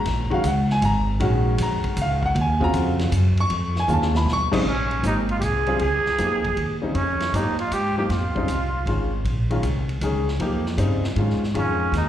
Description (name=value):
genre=modal jazz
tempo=156 BPM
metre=3/4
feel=swing 66% on 8ths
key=Eb dorian, Bb dorian from 4.6 s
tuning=A4 = 440 Hz
part: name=clear concert grand piano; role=accompaniment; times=0.0-12.1 s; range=Ab2 to Db6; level=-24 LUFS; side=left 1 dB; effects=slapback echo
part: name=upright bass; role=bass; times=0.1-12.1 s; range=Ab1 to Ab2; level=-23 LUFS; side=equal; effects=none
part: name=vintage drum kit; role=drums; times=0.1-12.1 s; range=crash cymbal, hi-hat, kick drum, ride cymbal, snare drum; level=-33 LUFS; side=equal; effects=none
part: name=growling trumpet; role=melody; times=4.7-9.1, 11.6-12.1 s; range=Db4 to Ab4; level=-24 LUFS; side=right 3 dB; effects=slapback echo
room=small room ambience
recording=live gig heard through the venue's PA, recital hall reverb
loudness=-20 LUFS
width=side -11 dB against mid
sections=0.0-4.6 A section; 4.6-12.1 B section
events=drum fill 3.9-4.3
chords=0.0 Ebm9; 3.5 Fm7; 4.6 Bbm9; 9.3 Db/Bb